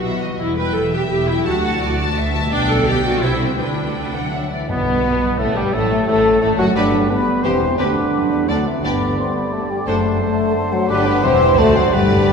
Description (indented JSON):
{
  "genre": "classical",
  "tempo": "159-178 BPM",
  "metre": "3/4",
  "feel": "straight",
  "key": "G major",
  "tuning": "A4 = 440 Hz",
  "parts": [
    { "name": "rich symphonic violin section", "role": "melody", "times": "0.0-12.3 s", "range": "G3 to A5", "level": "-28 LUFS", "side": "left 4 dB", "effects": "none" },
    { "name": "rich symphonic violin section", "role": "second line", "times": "0.0-12.3 s", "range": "G3 to F#5", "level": "-27 LUFS", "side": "left 2 dB", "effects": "none" },
    { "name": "rich symphonic viola section", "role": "accompaniment", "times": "0.0-12.3 s", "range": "F#3 to B4", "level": "-24 LUFS", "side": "right 2 dB", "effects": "none" },
    { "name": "concert harp", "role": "arpeggios", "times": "0.0-12.3 s", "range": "F#2 to D5", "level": "-28 LUFS", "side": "left 4 dB", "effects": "none" },
    { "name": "rich symphonic cello section", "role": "bass", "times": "0.0-12.3 s", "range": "C2 to D3", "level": "-25 LUFS", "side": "right 1 dB", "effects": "none" },
    { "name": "warm studio double bass section", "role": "bass", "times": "0.0-12.3 s", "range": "E1 to D2", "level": "-25 LUFS", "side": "right 2 dB", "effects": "none" },
    { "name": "mellow hollow concert flute", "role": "second line", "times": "4.3-12.3 s", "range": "E5 to D6", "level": "-26 LUFS", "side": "left 3 dB", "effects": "none" },
    { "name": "mellow French horn section", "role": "sustained chords", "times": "4.3-12.3 s", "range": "E3 to D4", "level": "-18 LUFS", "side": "left 1 dB", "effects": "none" },
    { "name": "mellow clarinet", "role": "second line", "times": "4.7-12.3 s", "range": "F#3 to A4", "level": "-29 LUFS", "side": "equal", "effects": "none" },
    { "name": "warm oboe", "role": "second line", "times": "4.7-12.3 s", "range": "B3 to D5", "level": "-26 LUFS", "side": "right 2 dB", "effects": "none" },
    { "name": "clear bassoon", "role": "accompaniment", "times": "4.7-12.3 s", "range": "F#2 to E3", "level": "-25 LUFS", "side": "right 2 dB", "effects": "none" },
    { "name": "timpani", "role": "percussion", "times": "4.7-5.2, 11.9-12.3 s", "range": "G2", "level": "-26 LUFS", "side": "equal", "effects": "none" }
  ],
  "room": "wet church reverb, RT60 3.2 s",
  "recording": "recorded in a church or concert hall",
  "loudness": "-15 LUFS",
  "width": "side -5 dB against mid",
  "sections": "0.0-4.7 A section; 4.7-12.3 B section",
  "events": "timpani fill 11.9-12.3",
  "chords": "0.0 B; 0.4 Em; 1.5 D; 2.5 G/B; 3.2 C; 3.6 G/D; 4.3 D; 4.7 G/B; 5.7 D7/A; 6.8 G; 7.4 C/E; 7.8 G/D; 8.5 D; 8.8 G; 9.9 D7/F#; 10.9 G; 11.2 C/E; 11.6 D7"
}